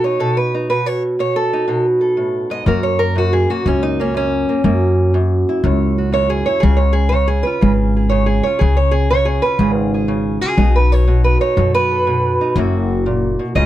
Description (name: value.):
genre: acoustic country blues, solo or duo.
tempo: 121 BPM.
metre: 4/4.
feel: swing 68% on 8ths.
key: unclear.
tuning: A4 = 437 Hz.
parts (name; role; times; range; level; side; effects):
fingerpicked steel-string acoustic guitar; melody; 0.0-13.7 s; F#2 to D#5; -16 LUFS; right 1 dB; none.
upright bass; bass; 2.7-13.7 s; F#1 to F#2; -15 LUFS; equal; none.
room: little or no reverb.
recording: close, detailed microphones.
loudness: -13 LUFS.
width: side -13 dB against mid.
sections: 0.0-13.7 A section.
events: steel-string acoustic guitar solo 0.0-13.7.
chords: 0.0 B7; 2.7 F#7; 6.6 C#; 10.6 B7; 12.6 F#7.